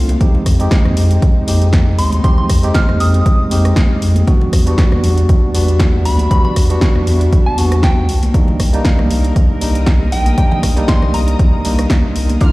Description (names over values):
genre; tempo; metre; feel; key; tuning
deep house; 118 BPM; 4/4; swing 54% on 16ths; unclear; A4 = 440 Hz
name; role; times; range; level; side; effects
soft synth bell; melody; 0.0-11.6 s; F5 to F6; -24 LUFS; right 1 dB; chorus, dub echo
tine electric piano; stabs; 0.0-12.5 s; G3 to G4; -19 LUFS; equal; fast stereo tremolo, sidechain pumping, low-pass filter, dub echo
round analog bass; bass; 0.0-12.4 s; Bb1 to F2; -14 LUFS; equal; sidechain pumping
clear studio string section; texture; 0.0-12.5 s; G3 to Eb6; -34 LUFS; left 2 dB; sidechain pumping
punchy analog drum machine; drums; 0.1-12.5 s; hi-hat, rim click, snare drum; -22 LUFS; equal; overdrive
congas; percussion; 0.1-12.4 s; none; -25 LUFS; right 1 dB; sidechain pumping on perc
electronic kick drum; drums; 0.2-12.5 s; none; -13 LUFS; equal; none
mallet-like synth pluck; arpeggios; 12.4-12.5 s; D4; -21 LUFS; equal; chorus, phaser, sidechain pumping
hi-hat; drums; 12.4-12.5 s; none; -35 LUFS; right 3 dB; sidechain pumping on hats, high-pass filter on hats, high-pass filter on room
string machine, violins; texture; 12.4-12.5 s; F6; -27 LUFS; right 1 dB; ensemble chorus, sidechain pumping
room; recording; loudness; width
studio reverb; played on a big sound system in a bare room, large studio reverb; -11 LUFS; side -20 dB against mid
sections
0.0-12.5 A section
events
fade-in on string section 0.0-12.5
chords
0.2 Fm7; 4.3 Em7; 8.1 Cm7